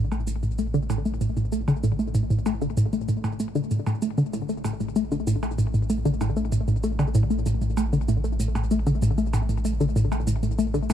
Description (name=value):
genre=ambient, sequencer-driven space music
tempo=96 BPM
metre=4/4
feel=straight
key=unclear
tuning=A4 = 440 Hz
part: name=tight sequenced synth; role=riff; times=0.0-10.9 s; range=A2 to A3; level=-23 LUFS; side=equal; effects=chorus, ping-pong delay
part: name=round analog bass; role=bass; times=0.0-10.9 s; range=A1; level=-29 LUFS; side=equal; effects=none
part: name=shaker and percussion blips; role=percussion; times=0.1-10.9 s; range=none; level=-40 LUFS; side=right 2 dB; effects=ping-pong delay
room=light reverb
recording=none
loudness=-22 LUFS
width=side -10 dB against mid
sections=0.0-10.9 A section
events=fade-in on drum 0.0-10.9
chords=none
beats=0.58 | 1.21 1.83 2.46 3.08 | 3.71 4.33 4.96 5.58 | 6.21 6.83 7.46 8.09 | 8.71 9.34 9.96 10.59